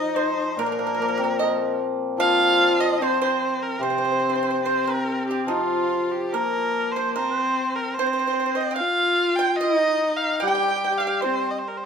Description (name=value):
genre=chinese traditional, Chinese chamber ensemble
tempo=74 BPM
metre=2/4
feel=rubato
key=C yu mode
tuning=A4 = 441 Hz
part: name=clear erhu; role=melody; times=0.0-11.9 s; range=F4 to G5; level=-24 LUFS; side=right 1 dB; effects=none
part: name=bright horsehead fiddle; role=second line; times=0.0-11.5 s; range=Bb3 to G4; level=-26 LUFS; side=left 3 dB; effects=none
part: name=pipa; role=second line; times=0.0-11.5 s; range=F4 to G5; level=-27 LUFS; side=right 6 dB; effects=none
part: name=hammered dulcimer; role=accompaniment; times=0.0-11.9 s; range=Bb2 to F4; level=-26 LUFS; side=left 2 dB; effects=none
room=moderate recital hall reverb, RT60 1.5 s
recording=minimal, uncompressed stereo recording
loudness=-20 LUFS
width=side -6 dB against mid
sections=0.0-5.5 A section; 5.5-11.9 B section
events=none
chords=none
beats=| 0.58 1.39 | 2.20 3.00 | 3.81 4.64 | 5.48 6.33 | 7.16 7.98 | 8.79 9.61 | 10.42 11.23